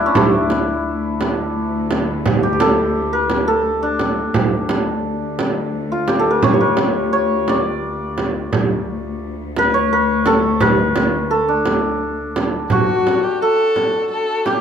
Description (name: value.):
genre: Persian modal ensemble.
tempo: 57 BPM (dotted quarters).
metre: 6/8.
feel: straight.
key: D avaz esfahan.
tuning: A4 = 442 Hz.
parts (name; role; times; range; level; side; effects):
santur; melody; 0.0-14.6 s; Bb3+50c to D5; -18 LUFS; equal; none.
rich studio cello section; drone; 0.0-12.8 s; D2; -24 LUFS; left 3 dB; none.
frame drum; percussion; 0.2-14.6 s; none; -19 LUFS; right 3 dB; none.
rich kamancheh; second line; 12.7-14.6 s; F#4 to A4; -20 LUFS; left 2 dB; none.
room: moderate small room reverb, RT60 0.6 s.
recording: close, detailed microphones.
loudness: -15 LUFS.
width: side -8 dB against mid.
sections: 0.0-12.7 A section; 12.7-14.6 B section.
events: none.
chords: none.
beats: | 0.16 1.20 | 2.25 3.30 | 4.34 5.39 | 6.43 7.48 | 8.53 9.57 | 10.62 11.67 | 12.71 13.76.